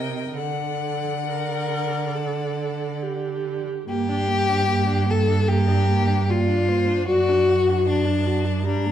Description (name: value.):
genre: classical, slow romantic movement for string quartet.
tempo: 67-77 BPM.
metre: 4/4.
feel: rubato.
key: G minor.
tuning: A4 = 440 Hz.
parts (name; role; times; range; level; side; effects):
rich violin; melody; 0.0-8.9 s; Bb4 to Bb5; -31 LUFS; left 10 dB; none.
clear violin; second line; 0.0-8.9 s; D4 to Eb5; -23 LUFS; left 4 dB; none.
warm viola; accompaniment; 0.0-8.9 s; G3 to Bb4; -28 LUFS; right 4 dB; none.
rich cello; bass; 0.0-8.9 s; F#2 to D3; -24 LUFS; right 3 dB; none.
room: wet recital hall reverb, RT60 1.4 s.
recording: dark, warm production.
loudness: -20 LUFS.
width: side -10 dB against mid.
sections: 0.0-3.9 A section; 3.9-8.9 B section.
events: none.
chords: 0.4 D; 3.9 Gm; 7.1 D/F#.